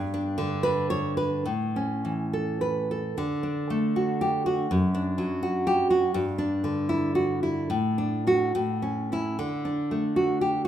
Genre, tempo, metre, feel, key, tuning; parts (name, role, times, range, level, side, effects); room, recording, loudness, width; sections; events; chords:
romantic piece for solo classical guitar; 68-83 BPM; 2/4; rubato; D major; A4 = 440 Hz
nylon-string guitar; solo; 0.0-10.7 s; F#2 to C#5; -24 LUFS; equal
moderate recital hall reverb, RT60 1.8 s; minimal, uncompressed stereo recording; -24 LUFS; side -10 dB against mid
0.0-3.2 A section; 3.2-10.7 A section
0.0 G; 1.4 A; 3.2 D; 4.7 D/F#; 6.1 Em7/G; 7.7 D/A; 8.5 A; 9.4 D